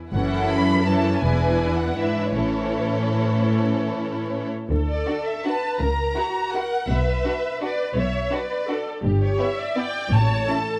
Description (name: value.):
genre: classical, orchestral ballroom waltz.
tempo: 145-181 BPM.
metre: 3/4.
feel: rubato.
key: A major, D major from 4.7 s.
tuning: A4 = 445 Hz.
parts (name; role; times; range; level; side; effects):
warm symphonic violin section; melody; 0.1-10.8 s; C#5 to B5; -30 LUFS; equal; none.
rich symphonic violin section; second line; 0.1-10.6 s; B3 to B4; -32 LUFS; equal; none.
rich symphonic viola section; accompaniment; 0.1-10.8 s; E3 to E5; -28 LUFS; equal; none.
rich symphonic double bass section; bass; 0.1-10.4 s; E1 to D2; -28 LUFS; equal; none.
warm chamber cello section; bass; 0.1-10.4 s; E2 to D3; -27 LUFS; equal; none.
timpani; percussion; 10.1-10.6 s; A2; -26 LUFS; equal; none.
room: light reverb.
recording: close, detailed microphones, vinyl crackle.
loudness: -23 LUFS.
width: mono.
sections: 0.0-4.7 A section; 4.7-10.8 B section.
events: none.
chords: 0.1 F#m7; 1.2 E7; 2.3 A; 4.7 D5; 5.8 F#/C#; 6.9 Bm; 9.0 Em/G; 10.1 A.